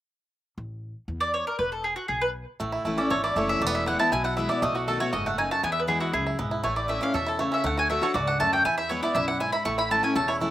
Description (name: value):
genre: bluegrass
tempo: 238 BPM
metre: 4/4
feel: straight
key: A major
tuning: A4 = 440 Hz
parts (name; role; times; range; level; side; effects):
- upright bass; bass; 0.6-10.5 s; E1 to E2; -35 LUFS; equal; none
- mandolin; melody; 1.2-10.4 s; F#4 to C#6; -25 LUFS; equal; none
- picked steel-string acoustic guitar; accompaniment; 2.6-10.5 s; E2 to F#4; -30 LUFS; left 2 dB; none
- bluegrass banjo; arpeggios; 2.6-10.5 s; A3 to A4; -29 LUFS; right 3 dB; none
room: little or no reverb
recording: recorded outdoors, with no room sound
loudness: -23 LUFS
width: side -13 dB against mid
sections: 0.6-2.6 A section; 2.6-10.5 B section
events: none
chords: 0.6 A5; 1.6 E5; 2.6 A; 3.6 E; 4.6 B7; 5.6 E; 6.6 A; 7.6 D; 8.7 E; 9.7 A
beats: | 0.58 0.84 1.09 1.34 | 1.60 1.85 2.10 2.35 | 2.61 2.86 3.11 3.37 | 3.62 3.87 4.12 4.38 | 4.63 4.88 5.13 5.38 | 5.63 5.88 6.14 6.39 | 6.64 6.89 7.14 7.39 | 7.64 7.90 8.15 8.40 | 8.65 8.90 9.15 9.40 | 9.66 9.91 10.16 10.41